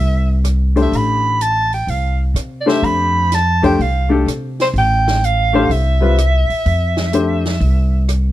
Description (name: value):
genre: modal jazz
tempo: 126 BPM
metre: 4/4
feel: swing 66% on 8ths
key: F lydian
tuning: A4 = 438 Hz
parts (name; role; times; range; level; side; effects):
- mellow soprano saxophone; melody; 0.0-8.1 s; C5 to B5; -18 LUFS; right 2 dB; none
- upright bass; bass; 0.0-8.3 s; A1 to C3; -16 LUFS; equal; none
- open jazz drum kit; drums; 0.4-8.2 s; hi-hat, kick drum, rim click, snare drum; -26 LUFS; right 2 dB; none
- clear baby grand piano; accompaniment; 0.8-7.4 s; G3 to C5; -17 LUFS; left 4 dB; none
room: small room reverb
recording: dry, close 1970s-style studio recording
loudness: -13 LUFS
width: side -14 dB against mid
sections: 0.0-8.3 A section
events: none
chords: 0.0 Fmaj9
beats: 0.44 | 0.92 1.40 1.88 2.35 | 2.83 3.31 3.79 4.27 | 4.75 5.22 5.70 6.18 | 6.66 7.13 7.61 8.09